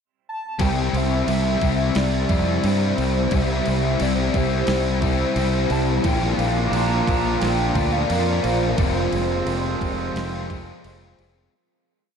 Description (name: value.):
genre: rock, shoegaze and dream pop.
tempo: 88 BPM.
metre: 4/4.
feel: straight.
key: C mixolydian.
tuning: A4 = 440 Hz.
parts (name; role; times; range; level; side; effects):
pure sine lead; melody; 0.3-11.2 s; C5 to Bb5; -28 LUFS; equal; chorus, ping-pong delay.
picked twelve-string acoustic guitar; arpeggios; 0.6-11.5 s; F3 to E4; -29 LUFS; right 5 dB; lush chorus, ping-pong delay.
biting overdriven guitar; riff; 0.6-11.5 s; F2 to F4; -24 LUFS; left 6 dB; analog chorus.
twangy electric guitar; riff; 0.6-11.5 s; F2 to E4; -31 LUFS; right 7 dB; reverse reverb.
growling fingered electric bass; bass; 0.6-11.5 s; F1 to G2; -24 LUFS; equal; overdrive.
clean 12-bit digital drum machine; drums; 0.6-11.3 s; crash cymbal, kick drum, snare drum; -28 LUFS; right 1 dB; none.
deep dark ambient pad; sustained chords; 7.4-11.5 s; F4 to Bb5; -30 LUFS; right 2 dB; chorus, built-in reverb.
room: wet huge ambient reverb, RT60 6.9 s.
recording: dreamy mix soaked in reverb.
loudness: -19 LUFS.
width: side -7 dB against mid.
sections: 0.0-0.6 pickup bar; 0.6-11.5 verse.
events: fade-out 8.8-11.5; break 11.2-11.5.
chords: 0.0 N.C.; 0.6 C; 6.1 Bb; 8.8 Fm.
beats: | 0.60 1.28 1.97 2.65 | 3.33 4.01 4.69 5.37 | 6.05 6.74 7.42 8.11 | 8.79 9.48 10.16 10.85.